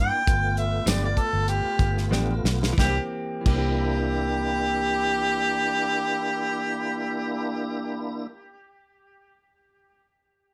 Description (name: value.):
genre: straight-eighth soul blues.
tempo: 88-104 BPM.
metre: 4/4.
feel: swing 54% on 16ths.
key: C mixolydian.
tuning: A4 = 445 Hz.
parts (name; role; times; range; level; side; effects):
mellow harmonica; melody; 0.0-8.3 s; G4 to G5; -29 LUFS; equal; none.
tonewheel organ; accompaniment; 0.0-8.3 s; A3 to F4; -33 LUFS; equal; slow rotary speaker, overdrive, chorus vibrato.
vintage muted fingered electric bass; bass; 0.0-8.3 s; G1 to C2; -30 LUFS; equal; none.
warm soul drum kit; drums; 0.3-3.7 s; crash cymbal, hi-hat, kick drum, snare drum, tambourine; -27 LUFS; equal; none.
direct-recorded clean electric guitar; stabs; 0.9-8.4 s; E3 to G4; -35 LUFS; equal; none.
room: moderate studio reverb, RT60 0.7 s.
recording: none.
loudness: -25 LUFS.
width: mono.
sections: 0.0-2.8 A section; 2.8-8.2 B section.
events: slowing down 0.0-2.8; drum fill 2.1-2.8.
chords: 0.3 G7; 2.8 C7.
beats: | 0.27 0.87 1.48 2.12 | 2.78 3.46 4.14 4.82 | 5.50 6.19 6.87 7.55.